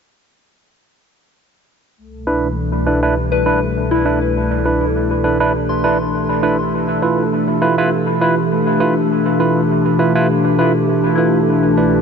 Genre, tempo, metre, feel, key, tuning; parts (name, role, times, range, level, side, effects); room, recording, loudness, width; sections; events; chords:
ambient; 101 BPM; 4/4; swing 54% on 16ths; A4 = 440 Hz
warbly tape-like pad; sustained chords; 2.0-12.0 s; C2 to G4; -17 LUFS; left 1 dB; chorus, built-in reverb, vintage 12-bit sampler grit
bubbling stepped-filter texture; texture; 2.0-12.0 s; A3 to A4; -24 LUFS; right 2 dB; chorus, built-in reverb
barky tine electric piano; stabs; 2.3-12.0 s; D4 to B4; -17 LUFS; right 2 dB; medium stereo tremolo, vintage 12-bit sampler grit, low-pass filter, dub echo
soft synth bell; arpeggios; 3.3-6.9, 11.2-12.0 s; E4 to C6; -23 LUFS; left 4 dB; chorus, phaser, low-pass filter, dub echo
moderate huge ambient reverb, RT60 6.2 s; nothing above 7.8 kHz; -14 LUFS; side -6 dB against mid
2.0-12.0 A section
filter sweep on tine electric piano 2.0-12.0; filter sweep on synth bell 2.0-12.0
2.0 Cmaj9; 6.7 Dm69; 11.5 Cmaj9